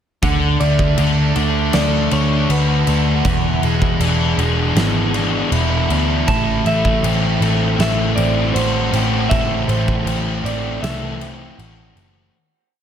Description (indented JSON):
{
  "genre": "rock, shoegaze and dream pop",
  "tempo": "79 BPM",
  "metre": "4/4",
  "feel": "straight",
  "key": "unclear",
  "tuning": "A4 = 440 Hz",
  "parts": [
    { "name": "clean electric guitar", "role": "melody", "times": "0.2-11.9 s", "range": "B4 to A5", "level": "-24 LUFS", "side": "right 1 dB", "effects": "analog delay" },
    { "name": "overdriven electric guitar", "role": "riff", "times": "0.2-12.3 s", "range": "E2 to F#4", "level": "-22 LUFS", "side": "right 11 dB", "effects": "reverse reverb" },
    { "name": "thick fuzz guitar", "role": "riff", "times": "0.2-12.3 s", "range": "A2 to D4", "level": "-21 LUFS", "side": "left 9 dB", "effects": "distortion, analog chorus" },
    { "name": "vintage muted picked electric bass", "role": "bass", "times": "0.2-12.3 s", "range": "E1 to D2", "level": "-19 LUFS", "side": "equal", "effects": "none" },
    { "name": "huge arena drum kit", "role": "drums", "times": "0.2-12.1 s", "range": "crash cymbal, kick drum, snare drum", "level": "-22 LUFS", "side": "equal", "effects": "none" }
  ],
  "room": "studio ambience",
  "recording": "none",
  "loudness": "-15 LUFS",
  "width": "side -9 dB against mid",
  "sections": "0.2-12.3 verse",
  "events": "fade-out 9.3-12.3",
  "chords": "0.2 D; 3.2 E7; 6.3 Am6"
}